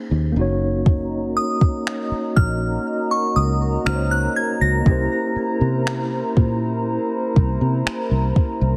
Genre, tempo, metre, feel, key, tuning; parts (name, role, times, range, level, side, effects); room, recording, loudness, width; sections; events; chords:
contemporary R&B; 60 BPM; 4/4; straight; A4 = 436 Hz
mellow tine electric piano; accompaniment; 0.0-8.8 s; Bb3 to Db5; -27 LUFS; equal
fingered electric bass; bass; 0.1-8.8 s; Gb1 to C3; -23 LUFS; equal
hollow soft pad; sustained chords; 0.9-8.8 s; E4 to Bb5; -30 LUFS; equal; chorus
smooth R&B drum kit; drums; 0.9-8.6 s; finger snaps, kick drum; -20 LUFS; equal
glassy synth bell; melody; 1.4-5.6 s; Db6 to Bb6; -27 LUFS; equal; chorus, delay
light reverb, digital ambience; heavily compressed radio sound; -20 LUFS; mono
0.0-8.8 A section
0.4 Gb6; 4.9 C7b9